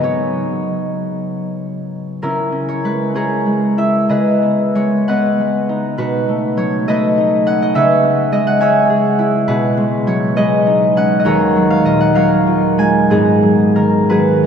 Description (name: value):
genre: classical, solo harp piece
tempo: 54-71 BPM (dotted quarters)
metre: 6/8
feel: rubato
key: C# dorian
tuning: A4 = 440 Hz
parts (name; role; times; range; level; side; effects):
- concert harp; solo; 0.0-14.5 s; D#2 to G#5; -12 LUFS; equal; none
room: wet cathedral reverb, RT60 5.1 s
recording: none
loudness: -12 LUFS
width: side -7 dB against mid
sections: 0.0-2.2 A section; 2.2-14.5 A section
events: none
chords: 0.0 C#9sus4; 2.2 C#m6; 4.1 G#m7/C#; 6.0 B9; 7.8 C#m7; 9.5 B69; 11.3 D#m11; 13.1 G#m7